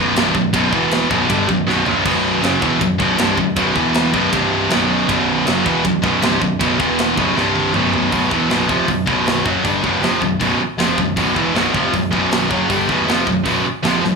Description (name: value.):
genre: heavy metal.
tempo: 158 BPM.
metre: 4/4.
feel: straight.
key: unclear.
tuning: A4 = 437 Hz.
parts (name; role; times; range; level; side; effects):
scooped high-gain guitar; riff; 0.0-14.2 s; B1 to G3; -17 LUFS; left 8 dB; distortion.
tight distorted guitar; riff; 0.0-14.2 s; B1 to G3; -18 LUFS; right 15 dB; distortion.
growling picked electric bass; bass; 0.0-14.2 s; B0 to G1; -28 LUFS; equal; overdrive.
tight metal drum kit; drums; 0.2-14.1 s; crash cymbal, hi-hat, kick drum, ride cymbal, snare drum, toms; -24 LUFS; right 1 dB; none.
room: little or no reverb.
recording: rough home demo mix, studio reverb.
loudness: -14 LUFS.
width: side -4 dB against mid.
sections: 0.0-8.1 A section; 8.1-14.2 B section.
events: drum fill 1.7-2.0, 7.4-8.1.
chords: 0.0 B5; 0.7 E5; 1.1 Bm; 3.8 E5; 4.1 B5; 4.3 C5; 4.7 B5; 6.8 E5; 7.2 B5; 7.4 C5; 7.7 B5; 8.1 Bm.